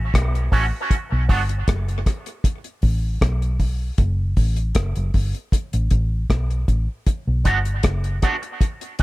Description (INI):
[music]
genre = dub reggae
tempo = 78 BPM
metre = 4/4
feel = straight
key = B minor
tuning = A4 = 440 Hz
[part]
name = vintage muted fingered electric bass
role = bass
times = 0.0-9.0 s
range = F#1 to B1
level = -21 LUFS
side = equal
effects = none
[part]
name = deep reggae drum kit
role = drums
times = 0.1-9.0 s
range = hi-hat, kick drum, rim click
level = -20 LUFS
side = equal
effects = none
[part]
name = electric guitar with an envelope filter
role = accompaniment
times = 0.5-1.4, 7.4-9.0 s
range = A3 to F#4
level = -25 LUFS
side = right 3 dB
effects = analog chorus, tape echo
[sound]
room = small room ambience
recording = echo-heavy mix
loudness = -19 LUFS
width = side -19 dB against mid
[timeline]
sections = 0.0-9.0 A section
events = none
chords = 0.0 F#m; 0.9 B5; 4.0 F#m; 7.1 Bm